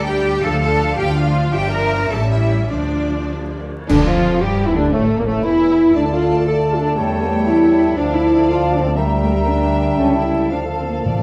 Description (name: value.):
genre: classical, dramatic, fast romantic movement for symphony orchestra.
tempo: 99-122 BPM (dotted quarters).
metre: 6/8.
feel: rubato.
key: D minor.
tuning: A4 = 441 Hz.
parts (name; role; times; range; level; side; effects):
warm symphonic violin section; melody; 0.0-11.2 s; A3 to A5; -31 LUFS; equal; none.
rich symphonic violin section; second line; 0.0-11.2 s; A3 to Bb5; -33 LUFS; equal; none.
rich symphonic viola section; accompaniment; 0.0-11.2 s; F3 to Bb4; -30 LUFS; equal; none.
clear symphonic cello section; bass; 0.0-11.2 s; G3 to Bb4; -25 LUFS; equal; none.
rich symphonic double bass section; bass; 0.0-11.2 s; G1 to G2; -23 LUFS; equal; none.
cymbal swell, clash cymbals and concert bass drum; percussion; 1.5-4.5 s; none; -28 LUFS; equal; none.
clear clarinet; second line; 3.9-11.2 s; A3 to F5; -30 LUFS; equal; none.
mellow hollow flute section; second line; 3.9-11.2 s; D4 to Bb5; -28 LUFS; equal; none.
mellow bassoon; accompaniment; 3.9-11.2 s; A2 to A3; -26 LUFS; equal; none.
warm French horn section; sustained chords; 3.9-11.2 s; G3 to A4; -20 LUFS; equal; none.
timpani; percussion; 11.1-11.2 s; A2; -21 LUFS; equal; none.
room: wet scoring stage reverb, RT60 1.5 s.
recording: dark, warm production, vinyl crackle.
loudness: -17 LUFS.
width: mono.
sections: 0.0-3.9 A section; 3.9-11.2 B section.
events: band accent 3.9-4.2.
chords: 0.4 Dm; 1.5 Gm7; 2.1 A7; 2.7 Dm; 3.9 Dmadd11; 4.9 A5; 6.0 Dm; 7.0 A7/E; 8.0 Dm; 9.0 Em7b5/D; 10.0 A7/C#; 10.5 Dm.